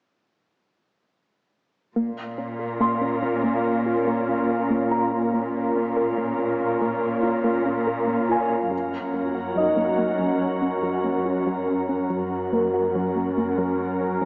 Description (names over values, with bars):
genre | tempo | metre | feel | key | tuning
cinematic | 71 BPM | 4/4 | straight | Bb minor | A4 = 440 Hz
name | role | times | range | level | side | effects
glassy FM pad | sustained chords | 2.5-14.3 s | Gb3 to Bb4 | -26 LUFS | equal | ensemble chorus, built-in reverb
tight sequenced synth | arpeggios | 2.0-14.3 s | Gb3 to Bb4 | -32 LUFS | equal | chorus, tape echo
warm symphonic cello section | bass | 2.0-14.3 s | Gb2 to Bb2 | -32 LUFS | equal | none
warm grand piano | texture | 2.8-14.3 s | Eb4 to C6 | -30 LUFS | equal | tape echo
room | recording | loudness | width
moderate scoring stage reverb, RT60 1.8 s | small speaker sound | -24 LUFS | mono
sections
2.0-14.3 A section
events
none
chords
2.0 Bbm; 8.7 Gb